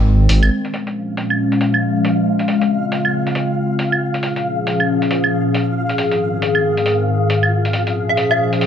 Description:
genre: future garage.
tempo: 137 BPM.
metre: 4/4.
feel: swing 61% on 16ths.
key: Bb minor.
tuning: A4 = 441 Hz.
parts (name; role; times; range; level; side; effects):
warbly tape-like pad; sustained chords; 0.0-8.7 s; Ab2 to Ab4; -17 LUFS; left 1 dB; chorus, built-in reverb, phaser.
dark detuned saw bass; bass; 0.0-0.5 s; Ab1; -12 LUFS; equal; tube saturation.
electronic hi-hat and claves; drums; 0.3-8.7 s; none; -22 LUFS; right 3 dB; low-pass filter on hats, studio reverb, low-pass filter on snare, low-pass filter on perc.
flickering grainy texture; texture; 1.3-8.7 s; F5; -25 LUFS; equal; built-in reverb.
hollow square pluck; melody; 8.1-8.7 s; F5; -18 LUFS; left 1 dB; ensemble chorus, tape echo.
room: wet lush hall reverb, RT60 1.6 s.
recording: none.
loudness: -15 LUFS.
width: side -8 dB against mid.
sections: 0.5-8.7 A section.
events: none.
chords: 0.0 Ab; 0.5 Bbm7; 2.3 Dbmaj7; 4.0 Bbm7; 5.8 Ab; 7.5 Bbm7.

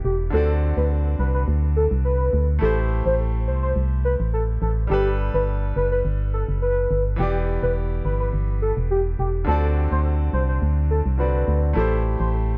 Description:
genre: dancehall.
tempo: 105 BPM.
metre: 4/4.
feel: straight.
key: unclear.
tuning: A4 = 440 Hz.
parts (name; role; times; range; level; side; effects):
warm velvety synth lead; melody; 0.0-12.3 s; G4 to C5; -28 LUFS; equal; chorus.
bright concert grand piano; accompaniment; 0.0-12.6 s; D3 to D5; -32 LUFS; equal; none.
organ-like FM bass; bass; 0.0-12.6 s; E1 to D2; -24 LUFS; equal; none.
room: little or no reverb.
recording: worn, warbling old tape, cassette tape, warbly pitch drift.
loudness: -22 LUFS.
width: mono.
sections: 0.0-12.6 A section.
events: none.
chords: 0.3 D7; 2.6 Am7; 4.9 Gadd9; 7.2 Em7; 9.5 D7; 11.8 Am7.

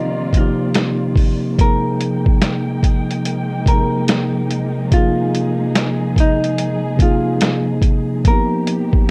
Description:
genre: lo-fi hip hop.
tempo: 72 BPM.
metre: 4/4.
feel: swing 65% on 16ths.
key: F dorian.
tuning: A4 = 442 Hz.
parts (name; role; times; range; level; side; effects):
vintage hollow-body jazz guitar; melody; 0.0-9.1 s; Eb4 to Bb4; -25 LUFS; equal; low-pass filter, analog delay, plate reverb.
mellow tine electric piano; accompaniment; 0.0-9.1 s; C3 to Bb4; -21 LUFS; equal; low-pass filter.
warm symphonic string section; sustained chords; 0.0-9.1 s; B2 to G5; -30 LUFS; equal; low-pass filter.
lo-fi sampler-style drum kit; drums; 0.3-9.1 s; finger snaps, hi-hat, kick drum, snare drum; -18 LUFS; equal; none.
room: light reverb.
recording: none.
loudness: -17 LUFS.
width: mono.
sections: 0.0-9.1 A section.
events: none.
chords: 0.0 Cm11; 1.6 Fm11; 8.2 G7alt.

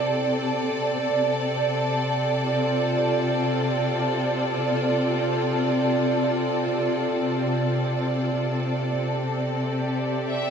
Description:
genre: ambient.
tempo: free time.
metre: none.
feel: none.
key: unclear.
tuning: A4 = 440 Hz.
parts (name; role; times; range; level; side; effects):
warm studio string section; solo; 0.0-10.5 s; C3 to E5; -22 LUFS; equal; tape echo.
room: wet plate reverb, RT60 2.4 s.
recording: echo-heavy mix.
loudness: -22 LUFS.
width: side -7 dB against mid.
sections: 0.0-10.5 A section.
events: none.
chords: 0.0 F6/C; 9.1 Am7/C.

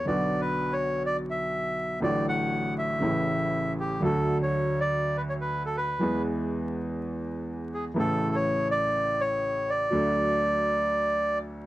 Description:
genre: tango.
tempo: 122 BPM.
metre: 4/4.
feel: rubato.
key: D major.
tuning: A4 = 440 Hz.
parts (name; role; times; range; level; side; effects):
bandoneon; melody; 0.0-11.4 s; G4 to F#5; -27 LUFS; equal; none.
warm baby grand piano; accompaniment; 0.1-11.7 s; A1 to A4; -28 LUFS; equal; none.
room: light reverb.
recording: dry, close 1970s-style studio recording, vinyl crackle.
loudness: -25 LUFS.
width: side -16 dB against mid.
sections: 0.0-11.7 A section.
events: none.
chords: 0.1 Bm; 2.0 D/A; 3.0 A; 4.0 D; 6.0 E; 8.0 A; 9.9 D.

